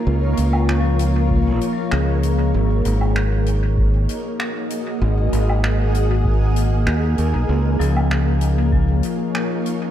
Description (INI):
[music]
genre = ambient dub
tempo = 97 BPM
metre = 4/4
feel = straight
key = unclear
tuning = A4 = 441 Hz
[part]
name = granular cloud pad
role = sustained chords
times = 0.0-9.9 s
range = A#3 to D#5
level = -24 LUFS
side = equal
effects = built-in reverb
[part]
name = modern bright fingered electric bass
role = bass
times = 0.1-9.0 s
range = G#1 to D#2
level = -18 LUFS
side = equal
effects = tube saturation
[part]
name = vibraphone with medium hard mallets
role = arpeggios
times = 0.3-9.9 s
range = E#3 to C#6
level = -26 LUFS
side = left 6 dB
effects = tape echo
[part]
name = soft-mallet drum kit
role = drums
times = 0.4-9.8 s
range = finger snaps, hi-hat, woodblock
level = -29 LUFS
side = right 1 dB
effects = studio reverb, dub echo
[part]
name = electronic kick drum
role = drums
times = 1.3-8.9 s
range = none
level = -21 LUFS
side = equal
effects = studio reverb
[sound]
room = studio reverb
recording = none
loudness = -16 LUFS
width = side -11 dB against mid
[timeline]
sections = 0.0-9.9 A section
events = none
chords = 0.0 C#69; 2.5 G#7(no3); 7.5 C#69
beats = | 0.07 0.68 1.30 1.92 | 2.54 3.16 3.78 4.40 | 5.01 5.63 6.25 6.87 | 7.49 8.11 8.73 9.34